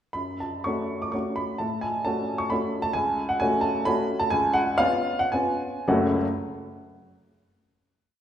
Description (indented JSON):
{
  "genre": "classical, piano waltz",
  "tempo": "103-140 BPM",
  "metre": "3/4",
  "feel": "rubato",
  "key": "F# minor",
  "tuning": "A4 = 442 Hz",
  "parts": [
    { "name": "clear upright piano", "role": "solo", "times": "0.1-6.2 s", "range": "F#1 to D6", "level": "-23 LUFS", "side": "equal", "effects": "none" }
  ],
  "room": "wet recital hall reverb, RT60 1.6 s",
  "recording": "heard from further back in the room",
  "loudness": "-23 LUFS",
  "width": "side -10 dB against mid",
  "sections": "0.1-5.9 A section; 5.9-7.4 final chord",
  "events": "none",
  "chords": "0.1 F#m; 1.6 F#m/A; 2.9 F#m/C#; 4.3 C#7; 5.9 F#m"
}